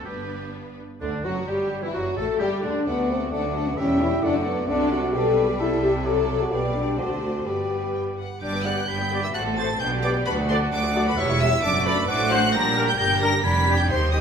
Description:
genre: quick classical-period movement for symphony orchestra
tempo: 131 BPM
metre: 2/4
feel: straight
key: G major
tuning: A4 = 440 Hz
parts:
  - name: rich studio violin section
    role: melody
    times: 0.0-14.2 s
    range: D4 to B6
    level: -29 LUFS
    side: left 1 dB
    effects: none
  - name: rich studio violin section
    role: second line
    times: 0.0-14.2 s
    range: D4 to G5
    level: -33 LUFS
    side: left 3 dB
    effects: none
  - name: warm oboe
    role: second line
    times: 0.0-14.2 s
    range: D4 to B5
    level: -31 LUFS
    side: right 3 dB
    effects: none
  - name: clear studio viola section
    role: accompaniment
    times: 0.0-14.2 s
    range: D3 to A4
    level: -33 LUFS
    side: right 2 dB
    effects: none
  - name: dark studio double bass section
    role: bass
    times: 0.0-14.2 s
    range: E1 to Eb2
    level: -29 LUFS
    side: right 2 dB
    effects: none
  - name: rich studio cello section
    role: bass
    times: 0.0-14.2 s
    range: D2 to D3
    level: -31 LUFS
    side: right 2 dB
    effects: none
  - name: mellow hollow silver concert flute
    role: second line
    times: 1.0-14.2 s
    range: D4 to B5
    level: -31 LUFS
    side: left 3 dB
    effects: none
  - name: mellow bassoon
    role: accompaniment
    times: 1.0-8.2 s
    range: D3 to C4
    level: -32 LUFS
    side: right 2 dB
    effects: none
  - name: dark French horn section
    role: sustained chords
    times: 1.0-14.2 s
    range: F#3 to A4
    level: -26 LUFS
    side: left 3 dB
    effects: none
  - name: dark trumpet section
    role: stabs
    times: 8.7-14.2 s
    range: G4 to E5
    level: -29 LUFS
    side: right 1 dB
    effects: none
room: wet recital hall reverb, RT60 1.5 s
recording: minimal, uncompressed stereo recording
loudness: -20 LUFS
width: side -7 dB against mid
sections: 0.0-1.0 A section; 1.0-8.4 B section; 8.4-14.2 B section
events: none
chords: 0.1 G; 1.0 G5; 1.9 F#m; 2.4 G5; 2.9 D; 3.8 C#dim/E; 4.2 D/F#; 4.7 D7/C; 5.1 G/B; 5.6 Am7/C; 6.1 D7/C; 6.5 G/B; 7.0 D7; 7.5 G; 9.3 F#dim/A; 9.8 G/B; 10.3 D; 11.2 C#dim/E; 11.6 D/F#; 12.1 D7/A; 12.5 Gm/Bb; 13.0 Gm; 13.4 G7/F

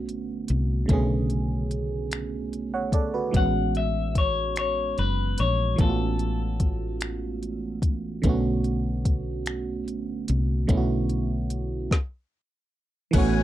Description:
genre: slow six-eight R&B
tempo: 49 BPM (dotted quarters)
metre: 6/8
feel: straight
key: unclear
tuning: A4 = 440 Hz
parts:
  - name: FM electric piano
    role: accompaniment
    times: 0.0-13.4 s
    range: C#3 to F#5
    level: -28 LUFS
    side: right 4 dB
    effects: chorus
  - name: woody fretless electric bass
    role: bass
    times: 0.0-13.4 s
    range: F#1 to C2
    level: -27 LUFS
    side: left 1 dB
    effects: none
  - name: smooth R&B drum kit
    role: drums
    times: 0.1-13.3 s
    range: crash cymbal, finger snaps, hi-hat, kick drum, snare drum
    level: -24 LUFS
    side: left 1 dB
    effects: none
  - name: clean electric guitar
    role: melody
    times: 3.4-7.8 s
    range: A4 to F#5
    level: -28 LUFS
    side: left 6 dB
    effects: none
  - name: bright tonewheel organ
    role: sustained chords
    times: 13.1-13.4 s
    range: B4 to C#6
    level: -35 LUFS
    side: right 2 dB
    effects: overdrive, chorus vibrato, slow rotary speaker
  - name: warm horn section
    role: stabs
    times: 13.1-13.4 s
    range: E3 to G#5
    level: -30 LUFS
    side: left 13 dB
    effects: none
room: little or no reverb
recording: dry, close 1970s-style studio recording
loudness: -23 LUFS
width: side -13 dB against mid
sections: 0.0-13.1 A section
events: stop 11.9-13.1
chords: 0.0 Bm7; 3.3 Amaj13; 8.2 Bm7

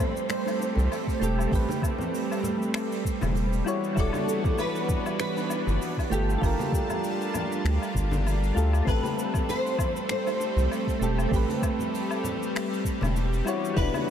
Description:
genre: sunset chillout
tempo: 98 BPM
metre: 4/4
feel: swing 55% on 16ths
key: A minor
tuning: A4 = 440 Hz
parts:
  - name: nylon-string guitar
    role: melody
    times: 0.0-14.1 s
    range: G4 to C5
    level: -33 LUFS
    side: equal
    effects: ensemble chorus, diffuse ambient delay
  - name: soft electric-piano-like synth keys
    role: accompaniment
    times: 0.0-14.1 s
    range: G3 to D5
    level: -31 LUFS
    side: moving between left 5 dB and right 5 dB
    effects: chorus, auto-pan, diffuse ambient delay
  - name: lush unison pad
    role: sustained chords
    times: 0.0-14.1 s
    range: E3 to A5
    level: -31 LUFS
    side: right 1 dB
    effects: chorus
  - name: jazz brush drum kit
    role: drums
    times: 0.0-14.0 s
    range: cabasa, finger snaps, hi-hat, woodblock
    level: -38 LUFS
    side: left 4 dB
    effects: none
  - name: bongos and congas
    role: percussion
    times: 0.5-14.0 s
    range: none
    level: -37 LUFS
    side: left 3 dB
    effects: none
  - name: round analog bass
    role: bass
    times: 0.8-13.9 s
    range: E1 to D2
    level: -25 LUFS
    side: equal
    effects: none
  - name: electronic kick drum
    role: drums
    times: 1.1-13.9 s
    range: none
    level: -28 LUFS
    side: equal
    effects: none
room: moderate huge ambient reverb, RT60 8.8 s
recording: dreamy mix soaked in reverb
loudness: -24 LUFS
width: side -9 dB against mid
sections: 0.0-14.1 A section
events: none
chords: 0.0 Am9; 3.7 Em9; 6.1 Gm9; 8.9 Am9; 13.5 Em9

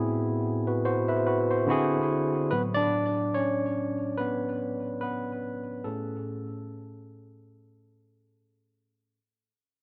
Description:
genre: R&B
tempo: 72 BPM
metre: 4/4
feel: swing 56% on 16ths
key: A major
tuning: A4 = 438 Hz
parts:
  - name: barky tine electric piano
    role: solo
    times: 0.0-9.2 s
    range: A2 to E5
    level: -29 LUFS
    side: equal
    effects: overdrive, tape echo
room: light reverb, digital ambience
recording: echo-heavy mix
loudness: -28 LUFS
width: mono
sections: 0.0-2.5 A section; 2.5-9.2 B section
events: fade-out 2.5-9.2; tine electric piano solo 2.5-9.2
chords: 0.0 Am69; 1.7 D7; 2.5 A69; 5.8 Amaj7

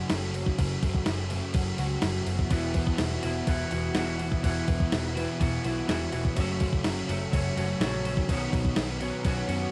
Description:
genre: rock, shoegaze and dream pop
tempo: 125 BPM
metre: 4/4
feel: straight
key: unclear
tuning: A4 = 440 Hz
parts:
  - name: picked plugged-in twelve-string acoustic guitar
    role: arpeggios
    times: 0.0-9.7 s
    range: D#3 to F#4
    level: -41 LUFS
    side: equal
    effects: analog chorus, cassette tape, tape echo
  - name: thick fuzz guitar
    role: riff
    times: 0.0-9.7 s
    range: E2 to B3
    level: -36 LUFS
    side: equal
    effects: distortion, ensemble chorus, cassette tape
  - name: vintage muted picked electric bass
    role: bass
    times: 0.0-9.7 s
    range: E1 to F#2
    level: -35 LUFS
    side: equal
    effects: none
  - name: crisp 8-bit digital drum machine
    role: drums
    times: 0.1-9.6 s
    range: crash cymbal, kick drum, snare drum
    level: -32 LUFS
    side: equal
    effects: cassette tape
  - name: semi-hollow electric guitar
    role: riff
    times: 2.5-9.7 s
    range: B2 to F#4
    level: -35 LUFS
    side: equal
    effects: reverse reverb, cassette tape
room: light reverb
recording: home recording on cassette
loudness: -28 LUFS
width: mono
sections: 0.0-9.7 A section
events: none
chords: 0.0 F#m; 2.5 Esus2; 6.4 F#m; 8.3 Badd9

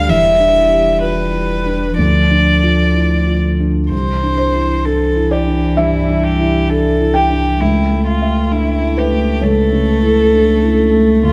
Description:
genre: neoclassical piano and strings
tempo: 65 BPM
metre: 4/4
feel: rubato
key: unclear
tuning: A4 = 441 Hz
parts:
  - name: rich violin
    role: melody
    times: 0.0-11.3 s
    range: E4 to F5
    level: -19 LUFS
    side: equal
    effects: none
  - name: warm cello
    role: second line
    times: 0.0-11.3 s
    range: E3 to A3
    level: -21 LUFS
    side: equal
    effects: none
  - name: felt-muted upright piano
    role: accompaniment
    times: 0.0-11.3 s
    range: C2 to G5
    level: -20 LUFS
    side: equal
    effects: none
  - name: pure sine sub bass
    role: bass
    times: 0.0-11.3 s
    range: E1 to D2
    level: -21 LUFS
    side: equal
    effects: none
room: wet stone room reverb, RT60 1.5 s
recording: band playing live in one room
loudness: -14 LUFS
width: mono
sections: 0.0-3.9 A section; 3.9-11.3 B section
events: none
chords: 0.1 Em7; 2.0 Dmadd9; 3.9 Cadd9; 7.6 A7/C#

